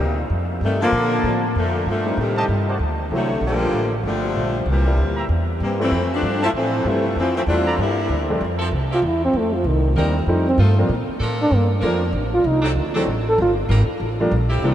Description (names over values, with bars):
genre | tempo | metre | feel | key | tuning
jazz, big band swing | 193 BPM | 4/4 | swing 61% on 8ths | F major | A4 = 444 Hz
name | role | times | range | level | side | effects
warm saxophone section | melody | 0.0-8.3 s | A2 to F4 | -22 LUFS | left 1 dB | none
upright bass | bass | 0.0-14.7 s | G1 to Bb2 | -21 LUFS | equal | none
clear grand piano | accompaniment | 0.8-14.7 s | F2 to F4 | -26 LUFS | equal | none
warm trumpet section | stabs | 0.8-2.8, 5.2-7.7 s | E4 to Bb5 | -31 LUFS | right 1 dB | none
edgy saxophone section | sustained chords | 8.6-14.7 s | F3 to Bb4 | -28 LUFS | equal | none
mellow trombone | melody | 8.9-13.5 s | Eb3 to A4 | -21 LUFS | right 1 dB | none
room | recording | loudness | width
wet huge ambient reverb, RT60 7.5 s | in a vast, echoing space | -17 LUFS | side -11 dB against mid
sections
0.0-8.4 A section; 8.4-14.7 B section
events
trombone solo 8.4-14.7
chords
0.3 Fadd9; 2.2 Am7b5; 2.8 D7; 3.4 Gm7; 4.7 C7; 5.9 Fmaj7; 7.8 C9; 8.4 Fmaj7(no3); 9.7 Cm7; 10.3 F9; 10.9 Bbmaj7; 12.1 Adim7; 12.8 D7; 13.4 Gm7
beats
0.30 0.61 | 0.92 1.24 1.55 1.86 | 2.17 2.48 2.80 3.11 | 3.42 3.73 4.04 4.36 | 4.67 4.98 5.29 5.60 | 5.92 6.23 6.54 6.85 | 7.16 7.47 7.79 8.10 | 8.41 8.72 9.03 9.34 | 9.65 9.96 10.27 10.59 | 10.90 11.21 11.52 11.83 | 12.14 12.45 12.76 13.07 | 13.38 13.70 14.01 14.32 | 14.63